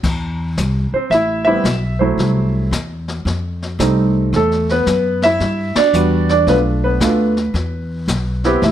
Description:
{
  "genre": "jazz piano trio",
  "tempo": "112 BPM",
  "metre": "4/4",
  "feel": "swing 67% on 8ths",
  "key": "E minor",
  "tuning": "A4 = 440 Hz",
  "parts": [
    { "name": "upright bass", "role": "bass", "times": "0.0-8.7 s", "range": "A1 to G2", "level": "-18 LUFS", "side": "equal", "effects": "none" },
    { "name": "jazz brush drum kit", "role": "drums", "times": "0.0-8.7 s", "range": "brushed snare drum, crash cymbal, hi-hat, kick drum, ride cymbal, snare drum", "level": "-24 LUFS", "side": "left 3 dB", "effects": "none" },
    { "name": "warm grand piano", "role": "melody", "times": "0.9-8.7 s", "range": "F#3 to E5", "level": "-15 LUFS", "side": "right 2 dB", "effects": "none" }
  ],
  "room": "light reverb",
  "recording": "none",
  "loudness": "-14 LUFS",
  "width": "side -11 dB against mid",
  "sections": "0.0-8.7 A section",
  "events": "band accent 5.7",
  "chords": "0.0 Amadd9; 2.2 F#m7b5; 3.3 F9; 4.3 Em9; 6.5 Bm7b5; 7.5 E5"
}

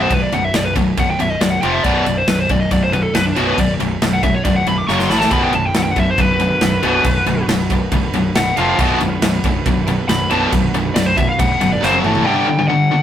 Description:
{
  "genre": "heavy metal",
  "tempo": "138 BPM",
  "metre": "4/4",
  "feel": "straight",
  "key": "B phrygian",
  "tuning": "A4 = 442 Hz",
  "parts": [
    { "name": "dark smooth lead guitar", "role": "melody", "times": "0.0-13.0 s", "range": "D4 to D6", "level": "-19 LUFS", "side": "left 1 dB", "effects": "overdrive" },
    { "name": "high-gain distorted guitar", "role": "riff", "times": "0.0-13.0 s", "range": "B1 to A3", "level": "-21 LUFS", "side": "right 5 dB", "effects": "distortion" },
    { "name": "tight distorted guitar", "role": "riff", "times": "0.0-13.0 s", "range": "B1 to A3", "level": "-19 LUFS", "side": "left 4 dB", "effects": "distortion" },
    { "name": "fuzz fingered electric bass", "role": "bass", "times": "0.0-12.2 s", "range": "B0 to A1", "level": "-24 LUFS", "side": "equal", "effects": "overdrive" },
    { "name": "modern studio drum kit", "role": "drums", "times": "0.1-12.3 s", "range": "crash cymbal, kick drum, snare drum, toms", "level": "-20 LUFS", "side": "right 1 dB", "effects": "none" },
    { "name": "lush unison pad", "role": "sustained chords", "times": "5.3-12.3 s", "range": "A2 to E5", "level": "-28 LUFS", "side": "equal", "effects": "chorus" }
  ],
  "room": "light reverb",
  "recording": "rough rehearsal-room recording",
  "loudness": "-13 LUFS",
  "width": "side -10 dB against mid",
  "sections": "0.0-12.3 A section",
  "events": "lead electric guitar solo 0.0-12.3; drum fill 4.9-5.3, 11.8-12.3",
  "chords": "0.0 B5; 1.6 F5; 1.8 B5; 4.9 F#5; 5.1 A5; 5.3 Bm; 8.6 F5; 8.8 Bm; 11.8 F#5; 12.0 A5; 12.3 G5"
}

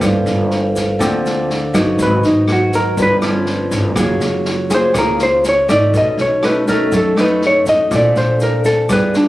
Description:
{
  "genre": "bossa nova",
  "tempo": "122 BPM",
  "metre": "4/4",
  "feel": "straight",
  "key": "unclear",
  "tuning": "A4 = 441 Hz",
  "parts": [
    { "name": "nylon-string guitar", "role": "accompaniment", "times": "0.0-9.3 s", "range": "G2 to Ab4", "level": "-18 LUFS", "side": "equal", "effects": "none" },
    { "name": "vibraphone with soft mallets", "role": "accompaniment", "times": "0.0-9.3 s", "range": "D4 to F5", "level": "-24 LUFS", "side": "right 2 dB", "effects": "none" },
    { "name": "upright bass", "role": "bass", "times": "0.0-9.3 s", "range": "Gb1 to F#2", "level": "-21 LUFS", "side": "equal", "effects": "none" },
    { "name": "open jazz drum kit", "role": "drums", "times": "0.0-9.2 s", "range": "kick drum, rim click, snare drum", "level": "-23 LUFS", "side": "equal", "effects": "none" },
    { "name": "tube shaker", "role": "percussion", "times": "0.0-9.3 s", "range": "none", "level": "-36 LUFS", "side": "left 1 dB", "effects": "none" },
    { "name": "hollow-body jazz guitar", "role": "melody", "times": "2.0-9.3 s", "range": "D4 to D#5", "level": "-14 LUFS", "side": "equal", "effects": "none" }
  ],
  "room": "light reverb",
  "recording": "recorded on a phone in the room, studio ambience, compression",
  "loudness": "-12 LUFS",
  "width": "side -16 dB against mid",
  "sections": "0.0-9.3 A section",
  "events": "hollow-body jazz guitar solo 0.0-9.3",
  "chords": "0.0 Gm11; 2.0 Abm7; 3.0 G7#11; 4.0 Gbmaj9; 5.9 B9; 7.9 Bbmaj7"
}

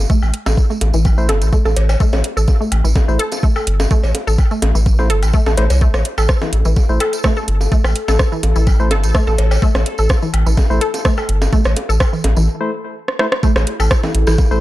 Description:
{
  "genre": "minimal techno",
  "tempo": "126 BPM",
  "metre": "4/4",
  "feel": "swing 53% on 16ths",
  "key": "A minor",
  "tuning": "A4 = 436 Hz",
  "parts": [
    { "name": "round analog bass", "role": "bass", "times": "0.0-14.6 s", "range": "G1 to C2", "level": "-15 LUFS", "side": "equal", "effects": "sidechain pumping" },
    { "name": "resonant blip pluck", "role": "riff", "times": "0.1-14.3 s", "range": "E3 to A4", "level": "-22 LUFS", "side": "equal", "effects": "chorus, sidechain pumping, tape echo" },
    { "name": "electronic kick drum", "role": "drums", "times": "0.1-14.5 s", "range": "none", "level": "-14 LUFS", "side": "equal", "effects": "overdrive" },
    { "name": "tambourine", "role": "percussion", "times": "0.1-14.6 s", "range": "none", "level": "-32 LUFS", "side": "right 4 dB", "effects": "none" },
    { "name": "electronic woodblock, bongos, cowbell and rim click", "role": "percussion", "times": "0.2-14.5 s", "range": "none", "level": "-24 LUFS", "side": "left 1 dB", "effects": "tape echo" },
    { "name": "garage drum kit", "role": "drums", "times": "0.3-14.2 s", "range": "hi-hat, rim click", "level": "-21 LUFS", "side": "right 1 dB", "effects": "overdrive" },
    { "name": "percussive organ stab", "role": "stabs", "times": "1.2-14.6 s", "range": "A3 to C5", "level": "-24 LUFS", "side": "left 2 dB", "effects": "chorus, tape echo" },
    { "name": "bubbling stepped-filter texture", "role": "texture", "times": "6.6-12.5 s", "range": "A4", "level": "-30 LUFS", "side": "left 2 dB", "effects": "chorus, built-in reverb, sidechain pumping" },
    { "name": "warbly tape-like pad", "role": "texture", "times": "13.7-14.6 s", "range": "E4 to A5", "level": "-24 LUFS", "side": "right 4 dB", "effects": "chorus, built-in reverb, sidechain pumping" }
  ],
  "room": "little or no reverb",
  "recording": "dry, gritty hardware recording, transformer saturation",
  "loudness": "-13 LUFS",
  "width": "side -16 dB against mid",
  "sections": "0.0-13.4 A section; 13.4-14.6 B section",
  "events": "break 12.5-13.4; drum fill 13.1-13.4; drop 13.4-14.6",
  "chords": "0.0 Am"
}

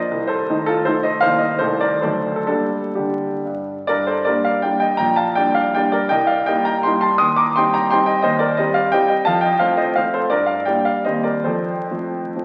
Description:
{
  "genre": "classical, romantic triple-time dance for piano with dotted rhythms",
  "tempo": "118-191 BPM",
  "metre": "3/4",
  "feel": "rubato",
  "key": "G minor",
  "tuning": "A4 = 441 Hz",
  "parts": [
    { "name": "clear grand piano", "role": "solo", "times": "0.0-12.4 s", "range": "Bb1 to Eb6", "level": "-19 LUFS", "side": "equal", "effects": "none" }
  ],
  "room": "wet scoring stage reverb, RT60 1.8 s",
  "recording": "very old 78 rpm record, vinyl crackle",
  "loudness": "-19 LUFS",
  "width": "mono",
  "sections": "0.0-3.9 A section; 3.9-12.4 B section",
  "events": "none",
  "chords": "0.1 Adim/C; 1.2 Cm7; 1.6 Adim/C; 2.0 D7b9; 2.5 Gm; 5.0 Gm/Bb; 6.1 Cm7; 7.2 Cm/Eb; 9.3 F; 10.3 Gm; 11.1 Cm7/Eb; 11.5 F"
}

